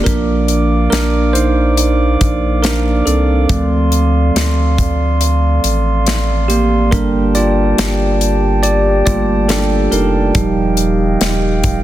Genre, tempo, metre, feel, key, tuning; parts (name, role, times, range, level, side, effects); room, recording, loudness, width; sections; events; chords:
pop ballad; 70 BPM; 4/4; straight; Bb major; A4 = 440 Hz
bell-like tine electric piano; accompaniment; 0.0-11.8 s; F3 to D5; -16 LUFS; right 2 dB
glass harmonica; sustained chords; 0.0-11.8 s; Bb3 to D6; -20 LUFS; right 1 dB
warm sub bass; bass; 0.0-11.8 s; Eb1 to D2; -16 LUFS; equal
modern studio drum kit; drums; 0.1-11.8 s; hi-hat, kick drum, snare drum; -18 LUFS; left 1 dB
light reverb; dense, heavily limited modern master; -11 LUFS; side -13 dB against mid
0.1-11.8 A section
tine electric piano solo 0.1-11.8
0.1 Bb; 3.5 Dm7; 6.9 Gmadd9; 10.4 Ebadd9